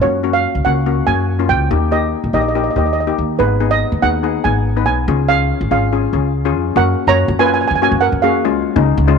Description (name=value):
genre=calypso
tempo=142 BPM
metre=4/4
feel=straight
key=F# major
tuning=A4 = 440 Hz
part: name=steel pan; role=melody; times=0.0-9.0 s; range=G#4 to A#5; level=-17 LUFS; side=right 9 dB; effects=none
part: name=steel pan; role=accompaniment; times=0.0-9.2 s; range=G#3 to B4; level=-18 LUFS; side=left 13 dB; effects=none
part: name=upright bass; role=bass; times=0.0-9.2 s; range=G#1 to F#2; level=-18 LUFS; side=equal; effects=none
room=light reverb, small room ambience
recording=1960s-style stereo with parts hard left and right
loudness=-13 LUFS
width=side -5 dB against mid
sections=0.0-6.8 A section; 6.8-9.2 B section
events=none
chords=0.0 F#; 1.7 D#; 3.4 G#m; 5.1 C#; 6.8 F#maj7; 8.4 C#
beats=| 0.02 0.44 0.86 1.29 | 1.71 2.13 2.55 2.97 | 3.39 3.81 4.24 4.66 | 5.08 5.50 5.92 6.34 | 6.76 7.18 7.60 8.03 | 8.45 8.87